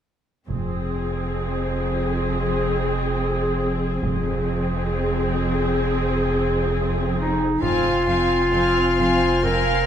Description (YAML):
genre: cinematic, suspense film score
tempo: 67 BPM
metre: 4/4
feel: straight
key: F minor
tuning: A4 = 440 Hz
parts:
  - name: clear studio viola section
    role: accompaniment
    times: 0.5-9.9 s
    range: C4 to Ab4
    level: -24 LUFS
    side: left 1 dB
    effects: none
  - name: rich chamber double bass section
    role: bass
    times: 0.5-8.0 s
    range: F1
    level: -31 LUFS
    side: right 2 dB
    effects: none
  - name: rich symphonic cello section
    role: bass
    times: 0.5-9.5 s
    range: F2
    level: -27 LUFS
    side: right 2 dB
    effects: none
  - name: punchy sub bass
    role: drone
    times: 0.5-9.9 s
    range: F1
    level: -27 LUFS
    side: equal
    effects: none
  - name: bright clarinet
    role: second line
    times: 7.2-9.9 s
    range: Eb4 to Bb4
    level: -20 LUFS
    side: left 1 dB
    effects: none
  - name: rich symphonic violin section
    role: melody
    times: 7.6-9.9 s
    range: Ab5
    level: -29 LUFS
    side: left 3 dB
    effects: none
  - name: clear chamber violin section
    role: second line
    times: 7.6-9.9 s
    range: F5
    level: -27 LUFS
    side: right 1 dB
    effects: none
  - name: rich chamber violin section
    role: texture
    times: 7.6-9.9 s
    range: C6 to F6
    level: -31 LUFS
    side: left 5 dB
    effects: none
room: wet recital hall reverb, RT60 1.3 s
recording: recorded in a church or concert hall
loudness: -19 LUFS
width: side -9 dB against mid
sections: 0.5-7.6 A section; 7.6-9.9 B section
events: none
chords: 0.5 Fm